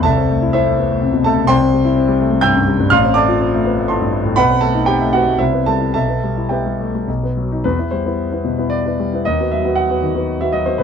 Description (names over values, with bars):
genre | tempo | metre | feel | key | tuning
classical, romantic character piece for solo piano | 105-128 BPM | 3/4 | rubato | E minor | A4 = 444 Hz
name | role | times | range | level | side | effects
warm concert grand piano | solo | 0.0-10.8 s | A1 to G6 | -14 LUFS | equal | none
room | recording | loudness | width
moderate studio reverb, RT60 0.7 s | dark, warm production | -14 LUFS | side -7 dB against mid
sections
0.0-7.6 A section; 7.6-10.8 B section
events
none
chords
0.0 Am/C; 1.5 C; 2.9 F/A; 4.4 B7b9; 5.4 Cmaj7; 5.9 Em/B; 7.1 B; 7.6 Em; 9.2 B/D#